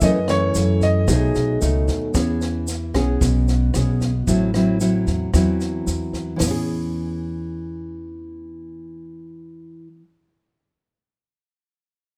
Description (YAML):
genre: bossa nova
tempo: 113 BPM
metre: 4/4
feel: straight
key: E major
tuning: A4 = 440 Hz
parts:
  - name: warm grand piano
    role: melody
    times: 0.0-1.6 s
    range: C#5 to D#5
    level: -26 LUFS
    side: equal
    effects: none
  - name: mellow hollow round clay ocarina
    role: second line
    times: 0.0-2.1 s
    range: G#4 to B4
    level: -29 LUFS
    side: equal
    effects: none
  - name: bright tine electric piano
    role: accompaniment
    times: 0.0-2.2 s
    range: D#4 to G#5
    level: -35 LUFS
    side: equal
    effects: none
  - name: nylon-string guitar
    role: accompaniment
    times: 0.0-10.0 s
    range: F#2 to G#4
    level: -25 LUFS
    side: equal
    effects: none
  - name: upright bass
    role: bass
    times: 0.0-9.9 s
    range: A1 to F#2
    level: -25 LUFS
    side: equal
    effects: none
  - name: compact cocktail drum kit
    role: drums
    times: 0.0-6.5 s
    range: hi-hat, kick drum, rim click, snare drum, toms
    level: -28 LUFS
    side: equal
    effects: none
  - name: tube shaker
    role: percussion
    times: 0.0-6.5 s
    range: none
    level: -35 LUFS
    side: equal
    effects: none
room: small room ambience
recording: rough home demo mix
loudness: -20 LUFS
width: mono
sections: 0.0-2.1 A section; 2.1-6.4 B section; 6.4-10.7 C section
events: none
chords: 0.0 F#m7; 1.1 B13; 2.1 E6; 4.3 Am6; 6.4 E6